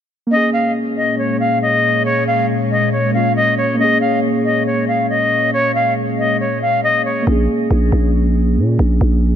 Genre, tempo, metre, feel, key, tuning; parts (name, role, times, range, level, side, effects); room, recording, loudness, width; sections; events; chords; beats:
hip hop; 138 BPM; 4/4; half-time; Bb minor; A4 = 440 Hz
reedy silver concert flute; melody; 0.3-7.2 s; Db5 to F5; -16 LUFS; left 1 dB; low-pass filter
muted felt-like synth keys; accompaniment; 0.3-9.4 s; Bb3 to Ab4; -20 LUFS; equal; chorus, low-pass filter
ethereal airy pad; sustained chords; 1.0-7.2 s; Bb2 to Db5; -22 LUFS; left 1 dB; ensemble chorus, built-in reverb
growling 808-style bass; bass; 7.3-9.4 s; Bb1 to Bb2; -14 LUFS; right 1 dB
moderate huge ambient reverb, RT60 4.9 s; dark, warm production; -14 LUFS; side -9 dB against mid
0.3-7.3 A section; 7.3-9.4 B section
0.3 Bbm7
| 0.32 0.75 1.18 1.62 | 2.05 2.49 2.92 3.36 | 3.79 4.23 4.66 5.10 | 5.53 5.97 6.40 6.84 | 7.27 7.71 8.14 8.58 | 9.01